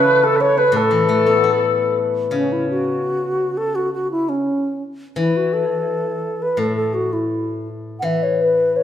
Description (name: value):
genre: chinese traditional, Chinese chamber ensemble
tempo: 85 BPM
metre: 2/4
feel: rubato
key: A gong mode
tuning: A4 = 441 Hz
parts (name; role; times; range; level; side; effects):
- bright reedy low xiao; melody; 0.0-8.8 s; C#4 to F#5; -20 LUFS; right 1 dB; none
- bright reedy large dizi; second line; 0.0-2.0 s; A4 to E5; -20 LUFS; left 5 dB; none
- hammered dulcimer; second line; 0.0-3.7 s; A4 to E5; -25 LUFS; right 4 dB; none
- steel-string zither; accompaniment; 0.0-8.8 s; A2 to E4; -20 LUFS; left 4 dB; none
room: wet recital hall reverb, RT60 1.4 s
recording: recorded in a church or concert hall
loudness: -16 LUFS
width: side -10 dB against mid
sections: 0.0-2.3 A section; 2.3-8.8 B section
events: none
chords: none